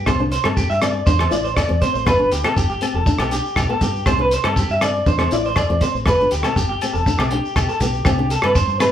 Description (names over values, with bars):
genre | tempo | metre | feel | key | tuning
highlife guitar band | 120 BPM | 4/4 | straight | C major | A4 = 442 Hz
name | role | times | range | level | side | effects
electric guitar through a small old amp | arpeggios | 0.0-8.9 s | G4 to E5 | -20 LUFS | right 1 dB | vibrato effect
fingered electric bass | bass | 0.0-8.9 s | E1 to G2 | -24 LUFS | equal | none
nylon-string guitar | accompaniment | 0.1-8.9 s | B3 to E4 | -25 LUFS | left 3 dB | none
cloth-damped thuddy drum kit | drums | 0.1-8.9 s | hi-hat, kick drum, rim click | -22 LUFS | equal | none
agogo bells | percussion | 0.1-8.9 s | none | -29 LUFS | left 5 dB | none
shekere | percussion | 0.1-8.9 s | none | -25 LUFS | equal | none
room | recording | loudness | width
moderate studio reverb, RT60 0.6 s | band playing live in one room | -16 LUFS | side -10 dB against mid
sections
0.0-8.1 A section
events
none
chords
0.1 C; 2.1 G; 4.1 C; 6.1 G; 8.1 C5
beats
| 0.07 0.57 1.07 1.57 | 2.07 2.57 3.07 3.57 | 4.07 4.57 5.07 5.57 | 6.07 6.57 7.07 7.56 | 8.06 8.56